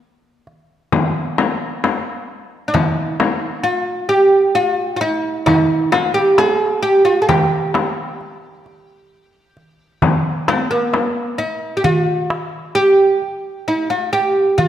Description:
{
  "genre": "Arabic maqam ensemble",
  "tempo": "132 BPM (eighths)",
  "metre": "10/8",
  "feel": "straight",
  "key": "G maqam huzam",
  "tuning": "A4 = 440 Hz",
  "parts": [
    { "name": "darbuka", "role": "percussion", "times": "0.5-14.7 s", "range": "none", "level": "-21 LUFS", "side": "right 1 dB", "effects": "none" },
    { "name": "frame drum", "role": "percussion", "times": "0.9-11.1 s", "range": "none", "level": "-20 LUFS", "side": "left 5 dB", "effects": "none" },
    { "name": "oud", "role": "melody", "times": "2.7-14.7 s", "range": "Bb3+50c to Ab4+50c", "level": "-15 LUFS", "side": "right 1 dB", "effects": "none" }
  ],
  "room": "moderate scoring stage reverb, RT60 1.8 s",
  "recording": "none",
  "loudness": "-14 LUFS",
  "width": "side -10 dB against mid",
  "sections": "0.0-11.8 A section; 11.8-14.7 B section",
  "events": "none",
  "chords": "none"
}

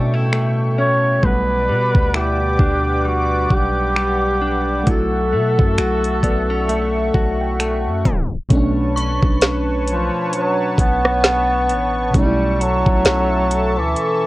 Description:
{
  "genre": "contemporary R&B",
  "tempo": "66 BPM",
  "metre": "4/4",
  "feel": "swing 58% on 16ths",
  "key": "B minor",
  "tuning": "A4 = 440 Hz",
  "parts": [
    { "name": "warm duduk", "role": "melody", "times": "0.0-14.3 s", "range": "E3 to C#5", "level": "-19 LUFS", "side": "equal", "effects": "cassette tape" },
    { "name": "mellow FM electric piano", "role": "accompaniment", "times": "0.0-14.3 s", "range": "A2 to B5", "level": "-26 LUFS", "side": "right 1 dB", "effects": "chorus, cassette tape" },
    { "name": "chorused pulse-width pad", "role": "sustained chords", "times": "0.0-14.3 s", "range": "A4 to D6", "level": "-25 LUFS", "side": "equal", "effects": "sidechain pumping, cassette tape" },
    { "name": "direct-recorded clean electric guitar", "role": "arpeggios", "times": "0.0-9.1 s", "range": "A2 to F#4", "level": "-24 LUFS", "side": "left 3 dB", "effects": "cassette tape, tape echo" },
    { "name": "long sustained 808-style bass", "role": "bass", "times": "0.0-14.0 s", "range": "A1 to B2", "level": "-21 LUFS", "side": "equal", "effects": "none" },
    { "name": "smooth R&B drum kit", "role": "drums", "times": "0.3-14.2 s", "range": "finger snaps, hi-hat, kick drum, rim click, snare drum", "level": "-17 LUFS", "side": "equal", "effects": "cassette tape" },
    { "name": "synth chime", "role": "texture", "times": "9.0-10.2 s", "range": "C#6", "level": "-28 LUFS", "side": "left 1 dB", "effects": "ensemble chorus, phaser, cassette tape, tape echo" }
  ],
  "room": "light reverb",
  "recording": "home recording on cassette, tape stop",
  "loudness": "-15 LUFS",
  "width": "side -18 dB against mid",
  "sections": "0.0-8.5 A section; 8.5-14.3 B section",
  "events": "FM electric piano fill 5.8-8.5; tape stop 8.1-8.5",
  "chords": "0.0 A7; 1.2 Gmaj7/B; 8.5 Bm9; 12.1 A7/B"
}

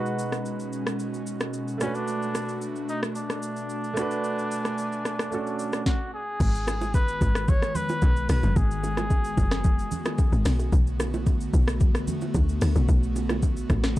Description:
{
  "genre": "amapiano",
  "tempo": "111 BPM",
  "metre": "4/4",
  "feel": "straight",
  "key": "unclear",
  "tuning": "A4 = 439 Hz",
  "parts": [
    { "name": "trumpet with cup mute", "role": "melody", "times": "0.0-10.5 s", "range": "C#4 to C#5", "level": "-32 LUFS", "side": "equal", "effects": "tape echo" },
    { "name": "clear concert grand piano", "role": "accompaniment", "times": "0.0-5.9 s", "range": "G#3 to B4", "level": "-32 LUFS", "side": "right 4 dB", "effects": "none" },
    { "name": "airy breathy pad", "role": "sustained chords", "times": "0.0-14.0 s", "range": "B2 to G#5", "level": "-33 LUFS", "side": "equal", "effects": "chorus, sidechain pumping" },
    { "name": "smooth R&B drum kit", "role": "drums", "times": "0.1-14.0 s", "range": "crash cymbal, hi-hat, kick drum, rim click, shaker, snare drum", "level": "-25 LUFS", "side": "equal", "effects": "overdrive" },
    { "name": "tight log drum bass", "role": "bass", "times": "6.4-14.0 s", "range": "F#1 to D2", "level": "-25 LUFS", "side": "equal", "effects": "none" },
    { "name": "congas and bongos", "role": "percussion", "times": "6.4-14.0 s", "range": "none", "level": "-34 LUFS", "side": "right 4 dB", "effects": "none" }
  ],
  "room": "digital ambience",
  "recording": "dark, warm production",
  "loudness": "-23 LUFS",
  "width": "side -16 dB against mid",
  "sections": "0.0-6.4 A section; 6.4-14.0 B section",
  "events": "drop 6.4-14.0",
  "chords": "0.0 G#m7; 1.8 Bm7; 6.4 G#m7; 10.5 Bm7"
}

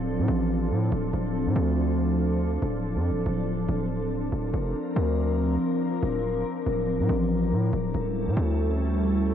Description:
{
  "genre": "hip hop",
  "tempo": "141 BPM",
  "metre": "4/4",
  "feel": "half-time",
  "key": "D minor",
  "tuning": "A4 = 441 Hz",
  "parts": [
    { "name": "glassy FM pad", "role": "sustained chords", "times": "0.0-9.3 s", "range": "F3 to Bb4", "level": "-26 LUFS", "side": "left 1 dB", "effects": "ensemble chorus, built-in reverb, cassette tape" },
    { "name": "hard-hitting 808-style bass", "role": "bass", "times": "0.0-9.3 s", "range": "D1 to A2", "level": "-26 LUFS", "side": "equal", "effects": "none" }
  ],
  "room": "moderate small room reverb, RT60 0.6 s",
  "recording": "home recording on cassette",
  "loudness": "-24 LUFS",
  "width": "side -9 dB against mid",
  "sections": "0.0-9.3 A section",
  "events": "none",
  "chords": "0.0 Dm7; 4.3 Bbadd9/D; 7.7 A7/D"
}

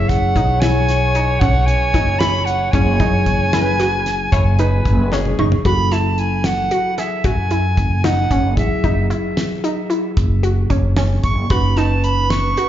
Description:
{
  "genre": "progressive instrumental, band music in an uneven meter",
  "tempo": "226 BPM (eighths)",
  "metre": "11/8",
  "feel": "straight",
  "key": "F# dorian",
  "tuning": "A4 = 440 Hz",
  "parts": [
    { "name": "bright reedy silver concert flute", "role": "melody", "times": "0.0-12.7 s", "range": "E5 to C#6", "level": "-21 LUFS", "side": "right 1 dB", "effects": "slapback echo, ping-pong delay" },
    { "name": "growling alto saxophone", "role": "second line", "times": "0.0-5.7, 11.5-12.7 s", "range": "G#4 to C#5", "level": "-25 LUFS", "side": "equal", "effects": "slapback echo" },
    { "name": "bell-like tine electric piano", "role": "accompaniment", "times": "0.0-12.7 s", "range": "F#3 to B4", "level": "-25 LUFS", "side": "equal", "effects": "slapback echo" },
    { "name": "analog pluck", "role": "arpeggios", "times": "0.0-12.7 s", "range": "C#4 to G#4", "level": "-24 LUFS", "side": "left 1 dB", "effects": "chorus, slapback echo" },
    { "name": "upright bass", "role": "bass", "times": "0.0-12.5 s", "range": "F#1 to F#2", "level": "-18 LUFS", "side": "equal", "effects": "none" },
    { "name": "damped 70s drum kit", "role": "drums", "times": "0.1-12.7 s", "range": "hi-hat, kick drum, snare drum, toms", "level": "-21 LUFS", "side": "equal", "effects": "none" }
  ],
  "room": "little or no reverb",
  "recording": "live gig heard through the venue's PA, club reverb, nothing above 7.5 kHz",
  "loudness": "-14 LUFS",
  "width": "side -11 dB against mid",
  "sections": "0.0-5.6 A section; 5.6-12.7 B section",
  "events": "drum fill 5.1-5.6",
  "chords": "0.0 E/F#; 5.6 F#m7; 11.5 Badd9/F#"
}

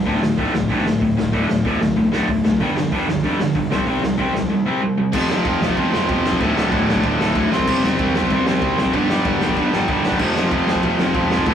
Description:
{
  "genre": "punk rock",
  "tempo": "190 BPM",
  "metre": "4/4",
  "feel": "straight",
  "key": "unclear",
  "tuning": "A4 = 441 Hz",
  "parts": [
    { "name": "cranked stack guitar", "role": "riff", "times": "0.0-11.5 s", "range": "D2 to C4", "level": "-21 LUFS", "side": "right 3 dB", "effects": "overdrive" },
    { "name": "distorted electric guitar", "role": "riff", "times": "0.0-11.5 s", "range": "D2 to C4", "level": "-21 LUFS", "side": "left 3 dB", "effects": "distortion" },
    { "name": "fuzz picked electric bass", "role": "bass", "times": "0.1-11.5 s", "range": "D1 to F2", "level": "-28 LUFS", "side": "equal", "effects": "none" },
    { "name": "raw garage drum kit", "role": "drums", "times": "0.1-11.5 s", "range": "crash cymbal, hi-hat, kick drum, ride cymbal, snare drum", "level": "-23 LUFS", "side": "equal", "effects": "none" },
    { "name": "tight distorted guitar", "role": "riff", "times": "5.1-11.5 s", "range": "D2 to C4", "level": "-24 LUFS", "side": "equal", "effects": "distortion" }
  ],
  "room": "moderate small room reverb, RT60 0.5 s",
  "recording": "rough rehearsal-room recording",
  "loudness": "-16 LUFS",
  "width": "side -9 dB against mid",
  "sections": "0.0-5.1 A section; 5.1-11.5 B section",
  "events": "none",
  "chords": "0.1 D5; 2.6 G5; 3.7 C5; 5.1 F5; 6.4 D5; 7.5 C/E; 8.9 G5; 10.2 F5"
}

